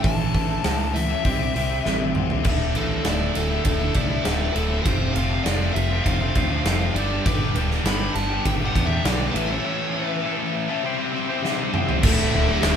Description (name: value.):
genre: quiet-loud alternative rock.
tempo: 100 BPM.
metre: 4/4.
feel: straight.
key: unclear.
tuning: A4 = 440 Hz.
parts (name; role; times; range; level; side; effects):
biting lead guitar; melody; 0.0-12.8 s; F#3 to B5; -29 LUFS; right 1 dB; overdrive.
twelve-string electric guitar; arpeggios; 0.0-7.3 s; D2 to E4; -33 LUFS; right 8 dB; none.
thick fuzz guitar; riff; 0.0-12.8 s; D2 to C5; -26 LUFS; left 7 dB; distortion.
growling picked electric bass; bass; 0.0-12.8 s; D1 to E2; -26 LUFS; equal; overdrive.
huge arena drum kit; drums; 0.0-12.8 s; crash cymbal, hi-hat, kick drum, ride cymbal, snare drum, toms; -24 LUFS; right 1 dB; none.
scooped high-gain guitar; riff; 2.4-12.8 s; D2 to C5; -29 LUFS; right 8 dB; distortion.
clear studio string section; sustained chords; 12.0-12.8 s; F#4 to D6; -34 LUFS; left 4 dB; none.
distorted electric guitar; riff; 12.0-12.8 s; D2 to D3; -28 LUFS; right 4 dB; distortion.
room: moderate stone room reverb, RT60 1.3 s.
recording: band playing live in one room.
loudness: -20 LUFS.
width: side -8 dB against mid.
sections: 0.0-2.5 A section; 2.5-12.0 B section.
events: drum fill 1.9-2.5, 11.4-12.0; lead electric guitar solo 2.5-12.0; break 9.7-12.0.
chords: 0.0 A; 1.2 C; 2.5 Dsus2; 4.9 F; 7.0 G; 9.4 A; 10.8 C; 12.0 Dadd9.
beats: | 0.04 0.65 1.25 1.85 | 2.46 3.06 3.66 4.26 | 4.86 5.46 6.06 6.66 | 7.26 7.86 8.46 9.05 | 9.65 10.25 10.85 11.44 | 12.04 12.63.